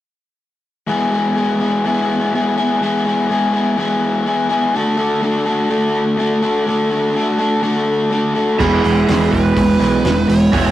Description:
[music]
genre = classic rock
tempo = 124 BPM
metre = 4/4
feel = straight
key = E mixolydian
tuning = A4 = 439 Hz
[part]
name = overdriven semi-hollow guitar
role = riff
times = 0.9-10.7 s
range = D3 to A4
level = -15 LUFS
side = left 1 dB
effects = none
[part]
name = smooth overdriven lead guitar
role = melody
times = 8.6-10.7 s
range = G#4 to C#5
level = -21 LUFS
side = right 3 dB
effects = none
[part]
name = crunchy overdriven guitar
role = riff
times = 8.6-10.7 s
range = E3 to E4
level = -17 LUFS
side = right 5 dB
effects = none
[part]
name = growling picked electric bass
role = bass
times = 8.6-10.7 s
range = E1 to B1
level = -20 LUFS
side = right 1 dB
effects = overdrive
[part]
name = cloth-damped thuddy drum kit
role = drums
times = 8.6-10.6 s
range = crash cymbal, hi-hat, kick drum, snare drum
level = -20 LUFS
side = right 1 dB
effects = none
[sound]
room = wet stone room reverb, RT60 1.2 s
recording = rough rehearsal-room recording, warm saturation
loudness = -14 LUFS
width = side -13 dB against mid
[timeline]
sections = 0.9-8.6 A section; 8.6-10.7 B section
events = none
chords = 0.9 E; 4.7 D; 8.6 E

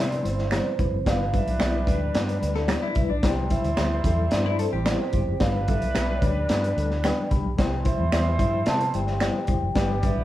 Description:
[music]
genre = uptempo 1960s-style soul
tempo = 110 BPM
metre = 4/4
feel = straight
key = C major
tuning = A4 = 442 Hz
[part]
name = vibraphone with medium mallets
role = melody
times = 0.0-10.2 s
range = C5 to A5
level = -30 LUFS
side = equal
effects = none
[part]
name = mellow horn section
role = second line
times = 0.0-10.2 s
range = G3 to D5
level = -35 LUFS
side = right 3 dB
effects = none
[part]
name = vibraphone with soft mallets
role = second line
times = 0.0-10.2 s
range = C4 to A4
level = -38 LUFS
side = right 3 dB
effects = none
[part]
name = mellow reed electric piano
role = accompaniment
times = 0.0-10.2 s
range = G3 to B5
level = -30 LUFS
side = left 3 dB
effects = fast tremolo
[part]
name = vintage muted fingered electric bass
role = bass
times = 0.0-10.2 s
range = F1 to C3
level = -27 LUFS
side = equal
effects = tube saturation
[part]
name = crunchy breakbeat drum kit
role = drums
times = 0.1-10.2 s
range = hi-hat, kick drum, snare drum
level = -26 LUFS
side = equal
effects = none
[part]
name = finger snap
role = percussion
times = 0.5-9.3 s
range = none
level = -35 LUFS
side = right 3 dB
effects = none
[part]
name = clean electric guitar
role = riff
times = 2.6-5.4 s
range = D4 to A4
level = -31 LUFS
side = left 6 dB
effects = phaser
[sound]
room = light reverb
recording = band playing live in one room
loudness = -21 LUFS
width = side -14 dB against mid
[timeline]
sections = 0.0-10.2 A section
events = reed electric piano fill 6.8-7.6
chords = 0.0 C; 1.1 G; 3.2 C; 5.4 G; 7.6 C

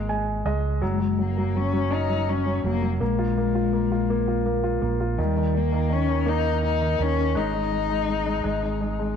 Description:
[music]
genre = six-eight pop ballad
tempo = 55 BPM (dotted quarters)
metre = 6/8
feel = straight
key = unclear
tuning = A4 = 443 Hz
[part]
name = dark cello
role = melody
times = 0.0-9.2 s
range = G3 to Eb4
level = -26 LUFS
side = left 9 dB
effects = none
[part]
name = clear baby grand piano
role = accompaniment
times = 0.0-9.2 s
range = Eb3 to Ab5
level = -27 LUFS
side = equal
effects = none
[part]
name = fingered electric bass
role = bass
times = 0.0-9.1 s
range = F1 to Eb2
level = -26 LUFS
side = right 3 dB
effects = none
[sound]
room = light reverb, studio reverb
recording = none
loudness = -22 LUFS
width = side -7 dB against mid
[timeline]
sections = 0.8-9.2 A section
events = grand piano fill 0.0-0.8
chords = 0.0 Absus4; 0.8 Gb5; 3.0 Bb5; 5.2 Eb5; 7.4 Ab5

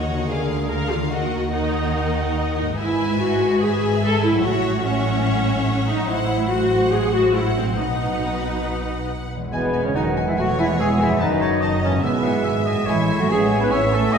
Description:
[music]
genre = classical, dramatic, fast romantic movement for symphony orchestra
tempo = 144 BPM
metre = 4/4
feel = straight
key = E major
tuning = A4 = 440 Hz
[part]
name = warm symphonic violin section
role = melody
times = 0.0-14.2 s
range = F5 to A5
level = -32 LUFS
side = left 2 dB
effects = none
[part]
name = clear symphonic violin section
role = second line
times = 0.0-14.2 s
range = Bb4 to F#5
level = -30 LUFS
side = left 3 dB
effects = none
[part]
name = warm symphonic viola section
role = accompaniment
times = 0.0-14.2 s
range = B3 to D#5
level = -23 LUFS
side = equal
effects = none
[part]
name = concert harp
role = arpeggios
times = 0.0-14.2 s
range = E2 to Db5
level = -30 LUFS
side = left 3 dB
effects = none
[part]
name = warm symphonic cello section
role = bass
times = 0.0-14.2 s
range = G#2 to D#4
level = -26 LUFS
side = right 2 dB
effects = none
[part]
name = warm symphonic double bass section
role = bass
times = 0.0-14.2 s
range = E1 to Eb2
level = -26 LUFS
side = right 2 dB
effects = none
[part]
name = bright clarinet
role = second line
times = 9.5-14.2 s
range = B3 to D#5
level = -26 LUFS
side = left 1 dB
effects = none
[part]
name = clear oboe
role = second line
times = 9.5-14.2 s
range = B4 to G#5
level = -28 LUFS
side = right 1 dB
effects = none
[part]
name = concert flute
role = second line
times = 9.5-14.2 s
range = B4 to D#6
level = -27 LUFS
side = left 1 dB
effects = none
[part]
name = mellow bassoon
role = accompaniment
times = 9.5-14.2 s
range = F#3 to B3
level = -27 LUFS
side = right 3 dB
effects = none
[part]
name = mellow French horn section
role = sustained chords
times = 9.5-14.2 s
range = E3 to F#4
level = -27 LUFS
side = left 2 dB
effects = none
[sound]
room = wet scoring stage reverb, RT60 1.5 s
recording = heard from further back in the room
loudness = -18 LUFS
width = side -6 dB against mid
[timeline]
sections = 0.0-9.5 A section; 9.5-14.2 B section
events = none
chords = 0.3 Bb/D; 1.1 Ebm; 2.8 E/G#; 4.4 F#m7/A; 6.1 F#m7b5/A; 7.8 B; 9.5 E; 11.2 B7/F#; 12.0 E/G#; 12.9 Amaj7

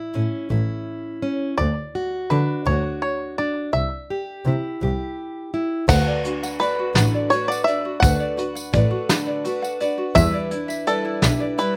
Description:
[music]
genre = indie folk with a building arrangement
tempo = 56 BPM (dotted quarters)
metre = 6/8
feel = straight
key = unclear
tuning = A4 = 440 Hz
[part]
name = bluegrass banjo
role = melody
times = 0.0-11.8 s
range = A4 to F#5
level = -25 LUFS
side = equal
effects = none
[part]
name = fingerpicked plugged-in steel-string acoustic guitar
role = accompaniment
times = 0.0-5.9 s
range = C3 to G4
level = -29 LUFS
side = equal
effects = slapback echo
[part]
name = clear double bass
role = bass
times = 0.1-11.3 s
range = A1 to D3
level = -24 LUFS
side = equal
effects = none
[part]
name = picked twelve-string acoustic guitar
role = accompaniment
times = 5.9-11.8 s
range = D3 to B4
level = -29 LUFS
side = equal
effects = none
[part]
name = tenor ukulele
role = arpeggios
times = 5.9-11.8 s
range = E4 to F#5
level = -29 LUFS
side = equal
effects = none
[part]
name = soft brush drum kit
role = drums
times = 5.9-11.7 s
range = crash cymbal, hi-hat, kick drum, snare drum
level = -24 LUFS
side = equal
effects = none
[part]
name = tambourine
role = percussion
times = 5.9-11.7 s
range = none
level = -38 LUFS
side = equal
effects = none
[sound]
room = little or no reverb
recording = recorded outdoors, with no room sound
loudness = -22 LUFS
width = mono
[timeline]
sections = 0.0-5.9 A section; 5.9-11.8 B section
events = none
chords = 0.0 A; 1.6 D; 3.7 C; 5.9 D6; 10.2 Em7

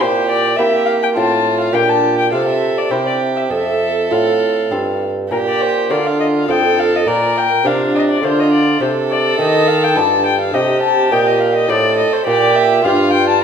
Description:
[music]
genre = classical, baroque-style sonata movement with continuo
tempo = 103 BPM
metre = 3/4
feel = straight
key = F major, Bb major from 5.3 s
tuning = A4 = 440 Hz
[part]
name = dark violin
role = melody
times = 0.0-13.4 s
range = Bb4 to A5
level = -18 LUFS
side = left 6 dB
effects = none
[part]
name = warm violin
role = second line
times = 0.0-13.4 s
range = D4 to Bb4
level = -18 LUFS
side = right 5 dB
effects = none
[part]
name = lute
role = accompaniment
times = 0.0-13.4 s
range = F2 to C5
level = -20 LUFS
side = equal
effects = none
[part]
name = dark bassoon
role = bass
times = 0.0-13.4 s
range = F2 to Bb3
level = -18 LUFS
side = right 2 dB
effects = none
[sound]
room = wet recital hall reverb, RT60 1.5 s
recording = minimal, uncompressed stereo recording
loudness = -12 LUFS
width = side -7 dB against mid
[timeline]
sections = 0.0-5.3 A section; 5.3-13.4 A section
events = none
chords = 0.0 C7/Bb; 1.2 F/A; 1.7 Gm7/Bb; 2.3 F/C; 2.9 C7; 3.5 F; 5.3 Bb; 6.5 F7; 7.1 Bb; 8.8 Cm; 10.0 G7; 10.5 Cm; 12.3 Gm7/Bb

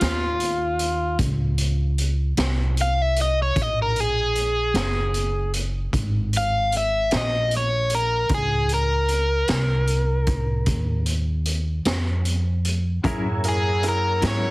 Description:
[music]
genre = slow blues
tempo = 51 BPM (dotted quarters)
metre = 12/8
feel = straight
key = Bb minor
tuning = A4 = 441 Hz
[part]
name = biting overdriven guitar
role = melody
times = 0.0-14.5 s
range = F4 to F5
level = -22 LUFS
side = equal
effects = none
[part]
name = upright bass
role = bass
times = 0.0-14.5 s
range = Gb1 to Ab2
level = -23 LUFS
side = equal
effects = none
[part]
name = raw garage drum kit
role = drums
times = 0.0-14.4 s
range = hi-hat, kick drum, snare drum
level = -26 LUFS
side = equal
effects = none
[part]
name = clean electric guitar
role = accompaniment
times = 13.0-14.5 s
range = Gb3 to Bb4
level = -28 LUFS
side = left 3 dB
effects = tremolo
[part]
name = tonewheel organ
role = sustained chords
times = 13.0-14.5 s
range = Bb3 to Ab4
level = -34 LUFS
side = equal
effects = slow rotary speaker, chorus vibrato
[part]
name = warm horn section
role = sustained chords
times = 13.0-14.5 s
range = Fb4 to Bb5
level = -33 LUFS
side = left 1 dB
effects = none
[part]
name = bright grand piano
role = accompaniment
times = 13.1-14.5 s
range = Fb4 to Bb4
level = -30 LUFS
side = right 2 dB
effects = none
[sound]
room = little or no reverb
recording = heavily compressed radio sound, multiband compression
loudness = -20 LUFS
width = side -22 dB against mid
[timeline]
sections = 0.0-14.5 A section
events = none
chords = 0.0 Bbm9; 13.0 Gb7

